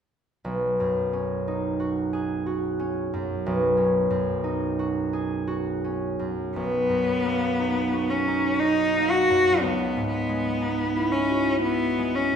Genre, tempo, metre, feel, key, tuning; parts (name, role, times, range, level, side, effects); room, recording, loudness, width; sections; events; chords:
classical, impressionist duo for cello and harp; 59 BPM; 3/4; rubato; B major; A4 = 440 Hz
concert harp; accompaniment; 0.4-12.4 s; B1 to G#4; -25 LUFS; right 1 dB
clear cello; melody; 6.6-12.4 s; B3 to F#4; -23 LUFS; left 1 dB
wet recital hall reverb, RT60 1.3 s; heard from further back in the room; -22 LUFS; side -7 dB against mid
0.4-6.6 A section; 6.6-12.4 B section
0.4 B69; 6.6 Bmaj7; 9.6 C#m11